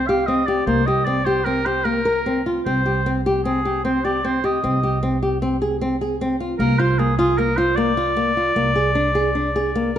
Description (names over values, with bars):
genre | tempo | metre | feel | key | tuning
contemporary instrumental, chamber music in an uneven meter | 152 BPM | 5/4 | straight | unclear | A4 = 440 Hz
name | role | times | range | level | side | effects
warm oboe | melody | 0.0-10.0 s | Ab4 to F5 | -22 LUFS | right 1 dB | none
flamenco guitar | arpeggios | 0.0-10.0 s | Bb3 to Bb4 | -20 LUFS | left 1 dB | none
upright bass | bass | 0.0-10.0 s | C2 | -25 LUFS | right 2 dB | none
room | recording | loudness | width
moderate recital hall reverb, RT60 1.4 s | nothing above 10.7 kHz | -17 LUFS | side -10 dB against mid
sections
0.0-10.0 A section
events
none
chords
0.0 C5; 2.7 Abmaj7/C (rootless); 6.6 Bb7/C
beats
0.28 | 0.68 1.07 1.46 1.86 2.26 | 2.66 3.06 3.45 3.85 4.24 | 4.63 5.03 5.42 5.81 6.21 | 6.59 6.99 7.38 7.77 8.16 | 8.56 8.96 9.35 9.76